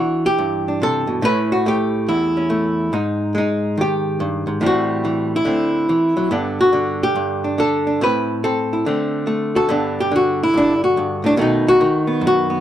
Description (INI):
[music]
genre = solo jazz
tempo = 142 BPM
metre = 4/4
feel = swing 65% on 8ths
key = G major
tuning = A4 = 440 Hz
[part]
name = archtop guitar, miked and amplified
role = solo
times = 0.0-12.6 s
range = E2 to B4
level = -16 LUFS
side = equal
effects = none
[sound]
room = light reverb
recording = dry, close 1970s-style studio recording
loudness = -16 LUFS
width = side -11 dB against mid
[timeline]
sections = 0.0-9.7 A section; 9.7-12.6 B section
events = none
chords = 0.0 Cmaj9#11; 1.2 A9; 2.9 Ab5; 4.6 Am7; 5.5 D7; 6.3 Gmaj9; 8.0 Am; 8.9 D7; 9.7 Gmaj9; 11.4 B7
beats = 0.39 0.81 | 1.23 1.66 2.08 2.50 | 2.93 3.35 3.77 4.20 | 4.62 5.04 5.47 5.89 | 6.32 6.74 7.16 7.58 | 8.01 8.43 8.85 9.27 | 9.70 10.12 10.54 10.96 | 11.38 11.80 12.23